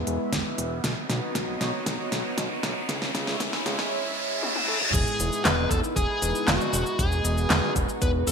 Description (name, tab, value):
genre	synthwave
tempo	117 BPM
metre	4/4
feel	straight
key	E major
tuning	A4 = 439 Hz
part	chorused pulse-width pad	sustained chords	0.0-8.3 s	G#3 to E5	-31 LUFS	right 1 dB	sidechain pumping
part	fat analog bass	bass	0.0-8.3 s	E1 to C#2	-29 LUFS	equal	none
part	riser and reverse cymbal	sound effects	0.4-4.9 s	none	-31 LUFS	equal	none
part	pop drum kit	drums	0.1-8.3 s	crash cymbal, handclaps, hi-hat, shaker, snare drum, toms	-27 LUFS	equal	studio reverb, gated reverb
part	electronic kick drum	drums	0.3-8.1 s	none	-29 LUFS	equal	studio reverb
part	smooth overdriven lead guitar	melody	4.7-8.3 s	F#4 to B4	-28 LUFS	left 1 dB	ping-pong delay
room	moderate plate reverb, RT60 1.6 s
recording	bright 1980s-style digital production, high-pass filter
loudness	-23 LUFS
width	side -6 dB against mid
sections	0.0-4.9 A section; 4.9-8.3 B section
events	drum fill 0.0-3.9, 4.4-4.9; filter sweep 0.0-4.9; riser 0.4-4.9; reverse cymbal 3.9-4.9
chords	0.0 E; 0.8 Badd9; 2.9 C#m; 4.9 Emaj7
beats	0.33 | 0.84 1.35 1.86 2.38 | 2.89 3.40 3.92 4.43 | 4.94 5.45 5.97 6.48 | 6.99 7.50 8.02